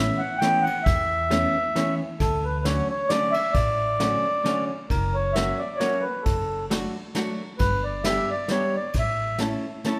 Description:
musette waltz; 133 BPM; 3/4; swing 55% on 8ths; D major; A4 = 440 Hz
mellow accordion; melody; 0.0-9.4 s; A4 to G5; -27 LUFS; equal
vintage hollow-body jazz guitar; accompaniment; 0.0-10.0 s; D3 to A4; -31 LUFS; equal
upright bass; bass; 0.0-9.5 s; F#1 to E2; -31 LUFS; equal
soft brush drum kit; drums; 0.4-10.0 s; kick drum, ride cymbal, snare drum; -32 LUFS; equal
moderate concert hall reverb, RT60 2.2 s; -24 LUFS; mono
0.0-4.9 A section; 4.9-10.0 B section
0.0 Aadd9; 2.2 Dmaj7; 4.9 F#; 6.3 D/F#; 7.6 G; 8.9 A

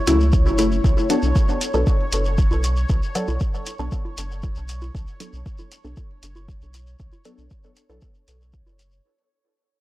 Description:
dub techno; 117 BPM; 4/4; straight; A4 = 441 Hz
bubbling stepped-filter texture; texture; 0.0-9.1 s; C#5; -32 LUFS; equal; chorus, built-in reverb, sidechain pumping
filtered dub chord stab; stabs; 0.1-8.1 s; C#3 to A4; -23 LUFS; left 1 dB; phaser, cassette tape, dub echo
pure sine sub bass; bass; 0.1-9.0 s; F#1 to C#2; -22 LUFS; equal; sidechain pumping
electronic hi-hat; drums; 0.1-8.9 s; -28 LUFS; right 2 dB
shekere; percussion; 0.1-9.0 s; -35 LUFS; left 2 dB
electronic kick drum; drums; 0.3-8.6 s; -20 LUFS; equal
congas; percussion; 0.5-8.8 s; -37 LUFS; right 2 dB
light reverb; dry, gritty hardware recording, transformer saturation; -18 LUFS; side -16 dB against mid
0.0-9.0 A section
fade-out 0.0-9.0; filter sweep on sub bass 0.0-9.0; filter sweep on synth stab 0.0-9.0
0.0 F#m7; 0.8 Bm7

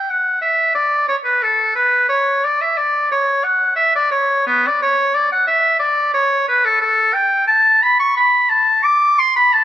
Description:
classical, baroque-style fantasia for unaccompanied oboe; 89 BPM; 4/4; rubato; D major; A4 = 440 Hz
clear oboe; solo; 0.0-9.6 s; B3 to D6; -13 LUFS; equal
moderate concert hall reverb, RT60 1.9 s; close, detailed microphones, lossy compression artefacts; -13 LUFS; side -12 dB against mid
0.0-9.6 A section

